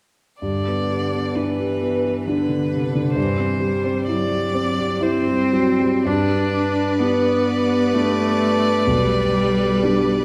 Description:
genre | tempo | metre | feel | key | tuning
classical, slow romantic movement for piano quartet | 64 BPM | 3/4 | uneven beats, rubato | G major | A4 = 440 Hz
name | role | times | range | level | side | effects
rich violin | melody | 0.4-10.2 s | B4 to D5 | -29 LUFS | equal | none
rich cello | second line | 0.4-10.2 s | D3 to D4 | -25 LUFS | equal | none
dark grand piano | accompaniment | 0.4-10.2 s | B1 to G4 | -23 LUFS | equal | none
clear violin | second line | 6.1-10.2 s | B4 | -26 LUFS | equal | none
room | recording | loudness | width
wet scoring stage reverb, RT60 1.7 s | heard from further back in the room | -20 LUFS | mono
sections
0.4-6.1 A section; 6.1-10.2 B section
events
none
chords
0.4 G; 3.2 C/G; 6.1 G; 8.9 G/B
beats
| 0.42 1.36 2.27 | 3.17 4.07 5.02 | 6.06 7.00 7.94 | 8.88 9.81

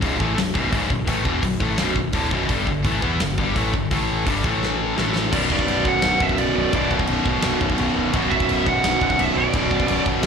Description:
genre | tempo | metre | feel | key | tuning
heavy metal | 170 BPM | 4/4 | straight | B minor | A4 = 440 Hz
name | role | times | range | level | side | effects
heavy high-gain guitar | riff | 0.0-10.3 s | B1 to E4 | -23 LUFS | left 9 dB | distortion, slapback echo
tight distorted guitar | riff | 0.0-10.3 s | B1 to E4 | -27 LUFS | right 18 dB | distortion
growling picked electric bass | bass | 0.0-10.3 s | B0 to E2 | -28 LUFS | equal | overdrive
big rock drum kit | drums | 0.0-10.3 s | crash cymbal, hi-hat, kick drum, snare drum | -25 LUFS | equal | none
high-gain lead guitar | melody | 5.3-10.0 s | D5 to F#5 | -23 LUFS | right 3 dB | distortion, slapback echo, ping-pong delay
distorted electric guitar | riff | 5.3-10.3 s | B1 to B2 | -26 LUFS | right 3 dB | distortion, slapback echo
room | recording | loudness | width
little or no reverb | live gig heard through the venue's PA, club reverb | -18 LUFS | side -6 dB against mid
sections
0.0-5.3 A section; 5.3-10.3 B section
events
drum fill 4.6-5.3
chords
0.0 Bm; 2.5 G5; 3.9 A5; 4.3 G5; 4.4 A5; 5.3 Bm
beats
0.02 0.38 0.73 | 1.08 1.44 1.79 2.14 | 2.50 2.85 3.20 3.55 | 3.91 4.26 4.61 4.96 | 5.32 5.67 6.02 6.37 | 6.72 7.08 7.43 7.78 | 8.13 8.48 8.83 9.18 | 9.53 9.88 10.23

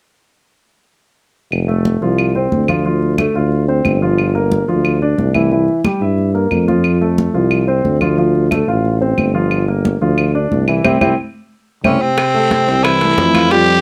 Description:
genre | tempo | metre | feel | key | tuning
Afro-Cuban jazz | 180 BPM | 4/4 | straight | F major | A4 = 440 Hz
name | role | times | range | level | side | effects
warm tuba | bass | 1.5-13.8 s | F1 to G2 | -18 LUFS | equal | none
claves | percussion | 1.5-13.5 s | none | -25 LUFS | equal | none
congas | percussion | 1.5-13.8 s | none | -24 LUFS | equal | none
warm grand piano | accompaniment | 1.7-13.8 s | E3 to F5 | -20 LUFS | equal | none
breathy trombone | second line | 11.8-13.8 s | C3 to G3 | -23 LUFS | equal | none
growling tenor saxophone | melody | 11.9-13.8 s | C4 to G4 | -16 LUFS | equal | none
bongos | percussion | 12.2-13.8 s | none | -27 LUFS | equal | none
guiro | percussion | 12.2-13.8 s | none | -33 LUFS | equal | none
timbales | percussion | 12.2-13.7 s | none | -28 LUFS | equal | none
room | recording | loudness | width
little or no reverb | close, detailed microphones | -15 LUFS | mono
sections
1.5-12.2 A section; 12.2-13.8 B section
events
band accent 10.8-12.2; drum fill 11.5-12.2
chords
1.5 F; 2.9 Dm7; 4.2 Gm7; 5.5 C7; 6.8 F; 8.2 Dm7; 9.5 Gm7; 10.8 C; 12.2 Fmaj7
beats
| 1.52 1.85 2.19 2.52 | 2.85 3.18 3.52 3.85 | 4.18 4.51 4.85 5.18 | 5.51 5.85 6.18 6.51 | 6.84 7.18 7.51 7.84 | 8.18 8.51 8.85 9.18 | 9.51 9.85 10.18 10.51 | 10.85 11.18 11.51 11.85 | 12.18 12.51 12.85 13.18 | 13.51

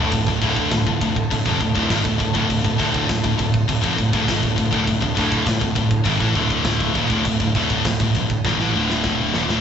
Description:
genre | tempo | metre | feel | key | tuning
heavy metal | 101 BPM | 4/4 | straight | D phrygian | A4 = 441 Hz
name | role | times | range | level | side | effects
rich chamber string section | sustained chords | 0.0-9.6 s | D3 to A4 | -31 LUFS | left 2 dB | none
heavy high-gain guitar | riff | 0.0-9.6 s | D2 to E3 | -22 LUFS | left 7 dB | distortion
sludgy distorted guitar | riff | 0.0-9.6 s | D2 to E3 | -21 LUFS | right 4 dB | overdrive
growling picked electric bass | bass | 0.0-9.6 s | D1 to A1 | -28 LUFS | left 1 dB | overdrive
tight metal drum kit | drums | 0.1-9.6 s | crash cymbal, kick drum, snare drum | -23 LUFS | equal | none
room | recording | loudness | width
light reverb | rough rehearsal-room recording, nothing above 7.9 kHz | -17 LUFS | side -8 dB against mid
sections
0.0-9.6 A section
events
drum fill 8.4-9.6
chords
0.0 Dm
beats
| 0.12 0.71 1.30 1.90 | 2.49 3.09 3.68 4.28 | 4.87 5.46 6.06 6.66 | 7.25 7.85 8.44 9.04

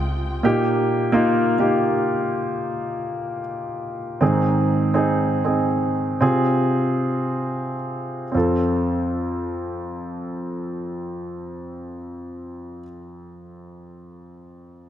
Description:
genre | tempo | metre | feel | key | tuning
pop | 54-65 BPM | 4/4 | straight | F minor | A4 = 440 Hz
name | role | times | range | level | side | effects
warm grand piano | accompaniment | 0.0-14.9 s | F2 to A4 | -21 LUFS | equal | none
room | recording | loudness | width
wet plate reverb, RT60 2.8 s | dreamy mix soaked in reverb | -20 LUFS | side -10 dB against mid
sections
0.0-8.3 A section; 8.3-12.8 B section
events
slowing down 0.4-8.3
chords
0.4 Eb; 4.2 Ab; 6.2 Fm; 8.3 F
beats
| 0.44 1.37 2.30 3.25 | 4.21 5.20 6.22 7.26 | 8.35 9.45 10.55 11.66

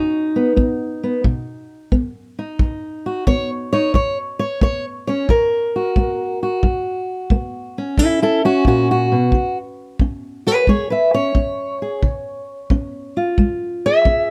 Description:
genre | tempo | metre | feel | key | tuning
acoustic country blues, solo or duo | 89 BPM | 4/4 | swing 68% on 8ths | F# major | A4 = 440 Hz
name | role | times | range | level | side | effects
fingerpicked steel-string acoustic guitar | melody | 0.0-14.3 s | F#2 to E5 | -20 LUFS | equal | none
kick drum | drums | 0.6-14.3 s | none | -21 LUFS | equal | none
room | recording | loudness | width
little or no reverb | close, detailed microphones | -19 LUFS | mono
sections
0.0-14.3 A section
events
steel-string acoustic guitar solo 0.0-14.3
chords
0.0 B; 3.9 F#; 9.3 C#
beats
0.58 | 1.25 1.93 2.60 3.27 | 3.95 4.62 5.29 5.96 | 6.64 7.31 7.98 8.66 | 9.33 10.00 10.68 11.35 | 12.03 12.71 13.38 14.06

